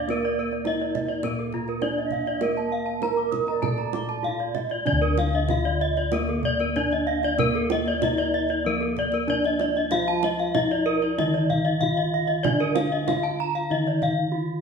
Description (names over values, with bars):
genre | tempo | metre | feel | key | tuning
Balinese gamelan | 95-106 BPM | 4/4 | straight | D pelog | A4 = 440 Hz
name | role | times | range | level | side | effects
gamelan-type bronze metallophone | melody | 0.0-14.6 s | Bb3 to Bb4 | -29 LUFS | equal | none
bright reedy bansuri | second line | 0.0-4.5 s | D5 to Eb5+38c | -35 LUFS | right 4 dB | none
gamelan-type bronze metallophone | accompaniment | 0.0-14.6 s | D3 to Bb3 | -32 LUFS | right 4 dB | none
gamelan-type bronze metallophone | arpeggios | 0.0-14.2 s | F4 to D6 | -26 LUFS | left 5 dB | none
gamelan-type bossed gongs | bass | 0.0-14.6 s | D2 to Bb4 | -31 LUFS | left 1 dB | none
kendang | percussion | 0.1-14.2 s | none | -32 LUFS | right 6 dB | none
gamelan-type bronze metallophone | arpeggios | 0.2-14.0 s | A4 to Eb6+35c | -30 LUFS | right 6 dB | none
room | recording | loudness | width
wet large studio reverb, RT60 1.2 s | band playing live in one room | -22 LUFS | side -5 dB against mid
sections
0.0-4.9 A section; 4.9-14.6 B section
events
none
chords
none